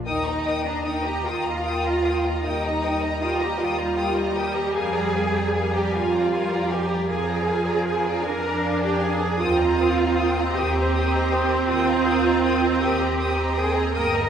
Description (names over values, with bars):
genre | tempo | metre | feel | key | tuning
classical, slow romantic movement for string orchestra | 52 BPM (dotted quarters) | 12/8 | rubato | Eb major | A4 = 442 Hz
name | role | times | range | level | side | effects
warm symphonic violin section | melody | 0.1-14.3 s | Ab5 to Eb6 | -31 LUFS | left 3 dB | none
warm symphonic violin section | second line | 0.1-14.3 s | Bb4 to Bb5 | -29 LUFS | left 2 dB | none
rich studio double bass section | bass | 0.1-14.3 s | G1 to F2 | -28 LUFS | equal | none
warm symphonic cello section | bass | 0.1-14.3 s | D4 to Bb4 | -24 LUFS | right 2 dB | none
warm symphonic viola section | accompaniment | 2.5-14.3 s | F3 to D4 | -25 LUFS | right 2 dB | none
room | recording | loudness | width
wet scoring stage reverb, RT60 1.8 s | heard from further back in the room | -20 LUFS | side -8 dB against mid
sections
0.1-14.3 A section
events
none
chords
0.1 Eb; 4.8 Bb7/F; 9.4 Eb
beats
| 0.06 1.25 2.44 3.60 | 4.75 5.94 7.10 8.24 | 9.39 10.55 11.69 12.82 | 13.94